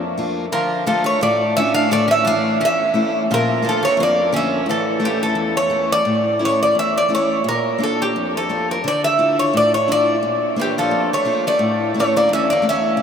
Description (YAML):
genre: greek folk, Greek bouzouki band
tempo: 86 BPM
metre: 2/4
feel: straight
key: unclear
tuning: A4 = 440 Hz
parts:
  - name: Greek bouzouki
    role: melody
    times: 0.0-13.0 s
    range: G4 to F5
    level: -17 LUFS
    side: right 1 dB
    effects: none
  - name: Greek bouzouki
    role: second line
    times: 0.0-5.7, 10.6-13.0 s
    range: E3 to D4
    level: -24 LUFS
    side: right 1 dB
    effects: none
  - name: picked steel-string acoustic guitar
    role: accompaniment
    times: 0.0-13.0 s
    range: E2 to C#5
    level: -22 LUFS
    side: left 3 dB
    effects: none
room: wet huge ambient reverb, RT60 9.0 s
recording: in a vast, echoing space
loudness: -15 LUFS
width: side -7 dB against mid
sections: 0.0-6.1 A section; 6.1-13.0 B section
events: none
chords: 0.0 Bb; 0.5 Dm; 1.9 A; 3.3 Bb; 4.7 A; 7.5 Bb; 8.8 Dmadd9; 10.2 Bb; 11.6 A